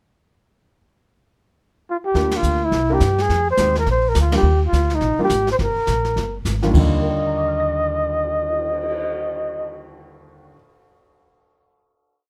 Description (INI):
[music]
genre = jazz, small-group swing and bop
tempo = 209 BPM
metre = 4/4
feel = swing 60% on 8ths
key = Eb major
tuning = A4 = 435 Hz
[part]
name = breathy flugelhorn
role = melody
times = 1.9-9.8 s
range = Eb4 to Eb5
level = -22 LUFS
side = equal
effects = none
[part]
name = warm upright piano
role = accompaniment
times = 2.1-10.8 s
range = Eb2 to Bb6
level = -26 LUFS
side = equal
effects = none
[part]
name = upright bass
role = bass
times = 2.1-10.5 s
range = G1 to G2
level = -23 LUFS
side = equal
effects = none
[part]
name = jazz brush drum kit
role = drums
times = 2.1-9.0 s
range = brushed snare drum, crash cymbal, cymbal swell, hi-hat, kick drum, ride cymbal, snare drum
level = -30 LUFS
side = equal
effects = none
[sound]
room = light reverb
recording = none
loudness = -19 LUFS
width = mono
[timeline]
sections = 1.0-2.1 pickup bar; 2.1-6.7 A section; 6.7-9.0 final chord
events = band accent 2.3, 4.3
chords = 1.0 N.C.; 2.1 Ebmaj7; 2.7 C7; 3.3 Fm7; 3.9 Bb; 4.4 Ebmaj7